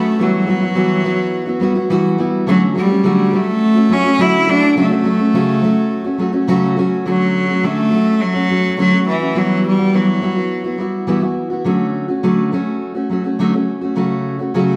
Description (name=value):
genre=pop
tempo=105 BPM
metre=4/4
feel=straight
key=D major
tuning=A4 = 438 Hz
part: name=bright cello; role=melody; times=0.0-10.8 s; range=E3 to E4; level=-18 LUFS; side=equal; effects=none
part: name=fingerpicked steel-string acoustic guitar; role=accompaniment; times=0.0-14.8 s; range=C#3 to F#4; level=-18 LUFS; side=equal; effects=none
room=wet stone room reverb, RT60 1.2 s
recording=band playing live in one room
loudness=-16 LUFS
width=mono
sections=0.0-7.1 A section; 7.1-14.8 B section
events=none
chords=0.2 Emadd9; 2.5 Dmaj7; 4.8 F#m/C#; 7.1 Dmaj7; 9.4 Emadd9; 11.7 Dmaj7; 14.0 F#m/C#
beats=| 0.19 0.76 1.33 1.91 | 2.48 3.05 3.62 4.20 | 4.77 5.34 5.92 6.49 | 7.06 7.64 8.21 8.78 | 9.36 9.93 10.51 11.08 | 11.66 12.23 12.81 13.38 | 13.96 14.53